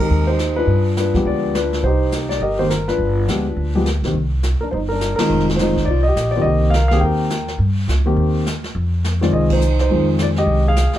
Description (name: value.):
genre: jazz piano trio.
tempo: 208 BPM.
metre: 4/4.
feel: swing 61% on 8ths.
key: C minor.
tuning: A4 = 437 Hz.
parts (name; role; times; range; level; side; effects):
dark baby grand piano; melody; 0.0-11.0 s; Eb3 to G5; -18 LUFS; left 1 dB; none.
upright bass; bass; 0.0-11.0 s; F1 to G2; -19 LUFS; equal; none.
jazz brush drum kit; drums; 0.0-11.0 s; brushed snare drum, hi-hat, kick drum, ride cymbal, snare drum; -28 LUFS; right 1 dB; none.
room: moderate studio reverb, RT60 0.6 s.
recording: none.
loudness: -15 LUFS.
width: side -12 dB against mid.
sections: 0.0-4.1 A section; 4.1-11.0 A section.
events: band accent 5.2, 9.5.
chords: 0.0 Abmaj7; 0.7 G7b9; 1.8 Cm7; 3.0 G7b9; 4.1 Cm7; 5.3 Fm7; 6.4 Cm7; 8.7 Fm7.